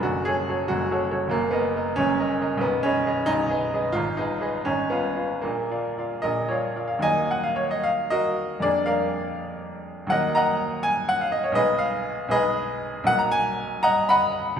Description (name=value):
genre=classical, romantic character piece for solo piano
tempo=71-95 BPM (dotted quarters)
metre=6/8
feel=rubato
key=Eb minor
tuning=A4 = 439 Hz
part: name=bright baby grand piano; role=solo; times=0.0-14.6 s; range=Cb1 to B5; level=-22 LUFS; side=equal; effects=none
room=wet recital hall reverb, RT60 1.7 s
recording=heard from further back in the room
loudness=-22 LUFS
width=side -8 dB against mid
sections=0.0-7.0 A section; 7.0-14.6 B section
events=none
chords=0.0 F#m; 1.3 Ebm/Gb; 2.6 Abm/Cb; 4.0 Abm; 4.7 Fdim/Ab; 5.4 Bb; 7.0 Ebm; 8.6 Bb7/F; 10.1 Ebm; 11.6 Abm/Cb; 13.1 Bmaj7